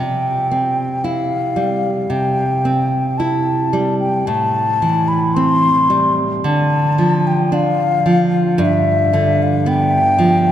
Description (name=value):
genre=romantic duo for flute and classical guitar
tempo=56 BPM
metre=4/4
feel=rubato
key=C major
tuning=A4 = 440 Hz
part: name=mellow hollow concert flute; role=melody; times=0.0-10.5 s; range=E5 to C6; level=-17 LUFS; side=left 2 dB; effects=none
part: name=nylon-string guitar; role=accompaniment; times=0.0-10.5 s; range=G2 to E4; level=-16 LUFS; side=right 1 dB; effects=none
room=wet cathedral reverb, RT60 6.3 s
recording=recorded in a church or concert hall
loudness=-14 LUFS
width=side -10 dB against mid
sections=0.0-10.5 A section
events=none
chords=0.0 C; 4.3 Am7; 6.4 Dm; 8.6 G7